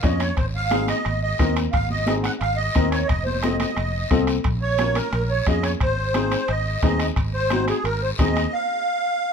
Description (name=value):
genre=latin, cumbia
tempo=177 BPM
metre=4/4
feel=straight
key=unclear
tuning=A4 = 443 Hz
part: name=musette accordion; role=melody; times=0.0-9.3 s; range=Ab4 to Gb5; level=-24 LUFS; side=right 2 dB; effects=none
part: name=warm upright piano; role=accompaniment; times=0.0-8.4 s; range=C4 to Db5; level=-26 LUFS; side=left 5 dB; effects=none
part: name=fingered electric bass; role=bass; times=0.0-8.5 s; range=F1 to F2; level=-25 LUFS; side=right 1 dB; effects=none
part: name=bombo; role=percussion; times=0.0-8.5 s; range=none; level=-24 LUFS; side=equal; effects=none
part: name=congas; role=percussion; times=0.0-8.4 s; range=none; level=-31 LUFS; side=right 3 dB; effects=none
part: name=guiro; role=percussion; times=0.0-8.5 s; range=none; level=-36 LUFS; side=left 5 dB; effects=none
part: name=timbales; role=percussion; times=0.0-8.5 s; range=none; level=-35 LUFS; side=right 4 dB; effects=none
room=little or no reverb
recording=minimal, uncompressed stereo recording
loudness=-19 LUFS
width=side -6 dB against mid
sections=0.0-9.3 A section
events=stop 8.5-9.3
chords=0.4 Ab; 3.1 F7; 4.5 Bbm; 5.8 Ab; 8.5 N.C.